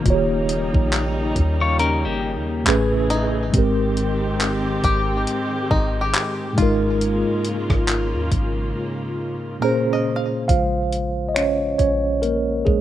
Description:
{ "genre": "contemporary R&B", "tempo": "69 BPM", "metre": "4/4", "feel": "swing 58% on 16ths", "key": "Bb dorian", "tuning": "A4 = 440 Hz", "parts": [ { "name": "mellow tine electric piano", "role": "accompaniment", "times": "0.0-12.8 s", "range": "Ab2 to F5", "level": "-22 LUFS", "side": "right 1 dB", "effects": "medium stereo tremolo" }, { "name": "warm studio string section", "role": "sustained chords", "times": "0.0-10.5 s", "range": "Db3 to G#4", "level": "-26 LUFS", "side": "equal", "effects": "sidechain pumping" }, { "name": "soft 808-style bass", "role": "bass", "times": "0.1-12.8 s", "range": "Eb1 to Eb2", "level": "-24 LUFS", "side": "equal", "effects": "none" }, { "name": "clean 12-bit digital drum machine", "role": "drums", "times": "0.1-12.8 s", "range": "finger snaps, handclaps, hi-hat, kick drum, rim click", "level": "-21 LUFS", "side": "equal", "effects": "vintage 12-bit sampler grit" }, { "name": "clean electric guitar", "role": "arpeggios", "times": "1.6-2.6 s", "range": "Bb3 to Db5", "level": "-22 LUFS", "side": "left 4 dB", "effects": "tremolo, digital delay" }, { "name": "bluegrass banjo", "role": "texture", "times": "3.1-11.4 s", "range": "Eb4 to F5", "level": "-27 LUFS", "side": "left 2 dB", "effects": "digital delay" } ], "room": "little or no reverb", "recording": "rough home demo mix", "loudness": "-18 LUFS", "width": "side -12 dB against mid", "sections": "0.0-10.5 A section; 10.5-12.8 B section", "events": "drums muted 8.8-10.5; tine electric piano solo 10.5-12.8", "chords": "0.1 Eb7; 2.7 Amaj7; 3.5 Abmaj7; 6.6 Db6/Ab; 9.6 Bbm7; 10.5 Bbm9", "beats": "| 0.06 0.93 1.80 2.67 | 3.54 4.41 5.28 6.14 | 7.01 7.88 8.75 9.62 | 10.49 11.36 12.23" }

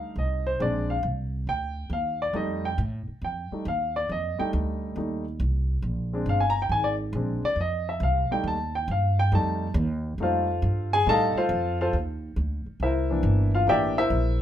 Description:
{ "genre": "jazz, big band swing", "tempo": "138 BPM", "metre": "4/4", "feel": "swing 68% on 8ths", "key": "F mixolydian", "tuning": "A4 = 441 Hz", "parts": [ { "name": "warm grand piano", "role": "accompaniment", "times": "0.0-14.4 s", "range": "E3 to Bb5", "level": "-25 LUFS", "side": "left 1 dB", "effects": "none" }, { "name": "upright bass", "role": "bass", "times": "0.0-14.4 s", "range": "G1 to A2", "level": "-27 LUFS", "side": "right 1 dB", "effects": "none" } ], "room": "moderate club reverb, RT60 0.7 s", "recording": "minimal, uncompressed stereo recording", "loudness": "-24 LUFS", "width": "side -10 dB against mid", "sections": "0.0-14.4 A section", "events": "grand piano solo 0.0-14.4", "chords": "0.0 F9; 0.6 Bb9; 2.3 F9; 5.8 Bb9; 7.6 F9; 12.8 C9", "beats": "0.16 | 0.60 1.04 1.48 1.91 | 2.35 2.79 3.22 3.66 | 4.09 4.53 4.97 5.40 | 5.84 6.28 6.71 7.15 | 7.58 8.02 8.45 8.89 | 9.32 9.76 10.19 10.63 | 11.06 11.50 11.93 12.37 | 12.80 13.24 13.67 14.11" }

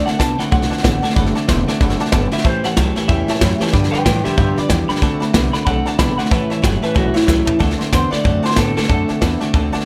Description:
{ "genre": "rockabilly", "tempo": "186 BPM", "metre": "4/4", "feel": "swing 60% on 8ths", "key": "D mixolydian", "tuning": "A4 = 440 Hz", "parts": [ { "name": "electric guitar through a small old amp", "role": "melody", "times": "0.0-9.1 s", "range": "E4 to B5", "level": "-24 LUFS", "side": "equal", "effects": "analog delay" }, { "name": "picked steel-string acoustic guitar", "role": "accompaniment", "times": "0.0-9.9 s", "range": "G2 to G4", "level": "-29 LUFS", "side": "equal", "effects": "none" }, { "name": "clean electric guitar", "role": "riff", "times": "0.0-9.8 s", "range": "G2 to B3", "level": "-23 LUFS", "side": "equal", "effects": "none" }, { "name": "upright bass", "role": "bass", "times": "0.0-9.8 s", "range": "E1 to A2", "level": "-24 LUFS", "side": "equal", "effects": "none" }, { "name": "tack piano", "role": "accompaniment", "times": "0.1-9.8 s", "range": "C#5 to D6", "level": "-30 LUFS", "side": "equal", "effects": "none" }, { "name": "soft brush drum kit", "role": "drums", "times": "0.1-9.8 s", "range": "hi-hat, kick drum, snare drum, toms", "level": "-20 LUFS", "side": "equal", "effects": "none" } ], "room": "moderate small room reverb, RT60 0.5 s", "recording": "none", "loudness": "-16 LUFS", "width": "mono", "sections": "0.0-7.6 A section; 7.6-9.9 B section", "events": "clean electric guitar solo 0.0-7.6; drum fill 7.3-7.6", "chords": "0.0 D7; 2.4 A7; 3.7 G7; 5.0 D7; 6.3 A7; 7.6 D7", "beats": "0.19 0.52 0.84 | 1.16 1.48 1.80 2.13 | 2.45 2.77 3.09 3.42 | 3.74 4.06 4.38 4.70 | 5.03 5.35 5.67 5.99 | 6.31 6.64 6.96 7.28 | 7.60 7.93 8.25 8.57 | 8.89 9.22 9.54" }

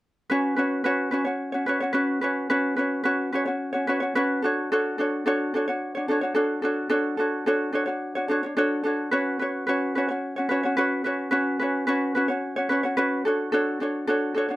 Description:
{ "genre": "pop", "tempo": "109 BPM", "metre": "4/4", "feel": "straight", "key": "unclear", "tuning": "A4 = 440 Hz", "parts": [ { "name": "ukulele", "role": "solo", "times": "0.3-14.6 s", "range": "C#4 to C#5", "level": "-22 LUFS", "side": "equal", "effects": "none" } ], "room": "moderate studio reverb, RT60 0.6 s", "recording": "none", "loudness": "-22 LUFS", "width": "side -16 dB against mid", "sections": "0.3-14.6 A section", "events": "none", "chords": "0.3 Bsus2; 4.4 Dmaj7; 9.1 Bsus2; 13.3 Dmaj7", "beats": "| 0.30 0.85 1.40 1.96 | 2.51 3.06 3.61 4.16 | 4.71 5.26 5.82 6.37 | 6.92 7.47 8.02 8.57 | 9.12 9.67 10.22 10.77 | 11.32 11.88 12.43 12.98 | 13.53 14.08" }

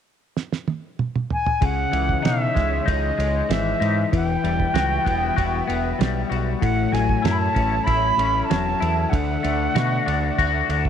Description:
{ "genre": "psychedelic rock", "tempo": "96 BPM", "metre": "4/4", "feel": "straight", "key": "C# minor", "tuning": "A4 = 441 Hz", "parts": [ { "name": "cloth-damped thuddy drum kit", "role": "drums", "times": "0.4-10.9 s", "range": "kick drum, ride cymbal, snare drum, toms", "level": "-26 LUFS", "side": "right 4 dB", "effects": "none" }, { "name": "silver concert flute", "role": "melody", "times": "1.3-10.9 s", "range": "D#5 to B5", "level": "-24 LUFS", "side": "right 2 dB", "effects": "slapback echo" }, { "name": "muted studio string section", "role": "sustained chords", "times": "1.6-10.9 s", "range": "E3 to E5", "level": "-34 LUFS", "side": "right 13 dB", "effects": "none" }, { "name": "twangy electric guitar", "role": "riff", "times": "1.6-10.9 s", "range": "A2 to F#4", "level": "-24 LUFS", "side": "left 11 dB", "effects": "rotary speaker" }, { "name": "growling fingered electric bass", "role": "bass", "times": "1.6-10.9 s", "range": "E1 to B2", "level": "-24 LUFS", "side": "right 1 dB", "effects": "overdrive" } ], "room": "light reverb, small room ambience", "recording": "1960s-style stereo with parts hard left and right", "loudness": "-19 LUFS", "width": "side -8 dB against mid", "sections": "0.0-1.6 A section; 1.6-10.9 B section", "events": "drum fill 0.4-1.6", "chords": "0.0 N.C.; 1.6 C#madd9; 4.1 Emadd9; 6.6 A6; 9.1 Dadd9", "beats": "0.36 0.98 | 1.61 2.24 2.87 3.49 | 4.12 4.75 5.37 6.00 | 6.62 7.25 7.88 8.50 | 9.13 9.76 10.38" }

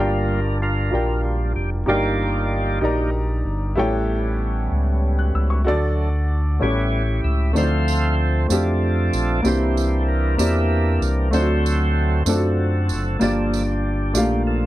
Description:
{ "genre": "slow gospel", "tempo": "64 BPM (dotted quarters)", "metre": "6/8", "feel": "straight", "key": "G minor", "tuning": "A4 = 440 Hz", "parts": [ { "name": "clear upright piano", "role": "accompaniment", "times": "0.0-14.7 s", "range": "G2 to F#6", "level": "-23 LUFS", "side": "equal", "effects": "none" }, { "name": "percussive tonewheel organ", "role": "sustained chords", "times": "0.0-14.7 s", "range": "E3 to F5", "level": "-25 LUFS", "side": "right 2 dB", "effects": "fast rotary speaker, overdrive" }, { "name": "fingered electric bass", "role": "bass", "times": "0.0-14.7 s", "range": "F1 to F#2", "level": "-21 LUFS", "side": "equal", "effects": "none" }, { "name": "tambourine", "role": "percussion", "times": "7.6-14.4 s", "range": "none", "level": "-32 LUFS", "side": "right 16 dB", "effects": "none" } ], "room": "little or no reverb", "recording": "dry, close 1970s-style studio recording", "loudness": "-18 LUFS", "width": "side -15 dB against mid", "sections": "0.0-14.7 A section", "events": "tonewheel organ solo 0.0-14.7", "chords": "0.0 Gm7; 1.9 Ebmaj7/G; 3.8 A7; 5.7 D; 6.6 A7; 7.6 Dm7; 9.4 C7; 11.3 D7; 13.2 Gm7", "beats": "0.93 | 1.88 2.82 | 3.77 4.72 | 5.66 6.61 | 7.55 8.50 | 9.44 10.38 | 11.32 12.27 | 13.21 14.15" }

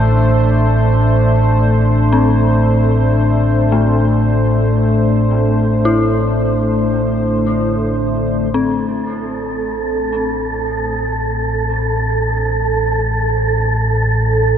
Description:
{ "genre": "dark ambient drone", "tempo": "free time", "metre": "none", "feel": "none", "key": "A minor", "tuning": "A4 = 440 Hz", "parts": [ { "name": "deep dark ambient pad", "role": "sustained chords", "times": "0.0-14.6 s", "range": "A3 to C5", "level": "-18 LUFS", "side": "left 1 dB", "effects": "chorus, built-in reverb" }, { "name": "deep rumbling drone", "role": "drone", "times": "0.0-14.6 s", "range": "A1 to A2", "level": "-16 LUFS", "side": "equal", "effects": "built-in reverb" }, { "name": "dark detuned synth bell", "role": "arpeggios", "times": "2.1-14.6 s", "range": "A3 to E4", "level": "-22 LUFS", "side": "left 4 dB", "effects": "chorus, diffuse ambient delay" }, { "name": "wind-like tuned noise texture", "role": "texture", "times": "9.1-14.6 s", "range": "A4", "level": "-18 LUFS", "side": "right 3 dB", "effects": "built-in reverb" } ], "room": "wet huge ambient reverb, RT60 8.0 s", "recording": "cassette tape", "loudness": "-13 LUFS", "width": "side -9 dB against mid", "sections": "0.0-8.5 A section; 8.5-14.6 B section", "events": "none", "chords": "0.0 Am", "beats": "free time" }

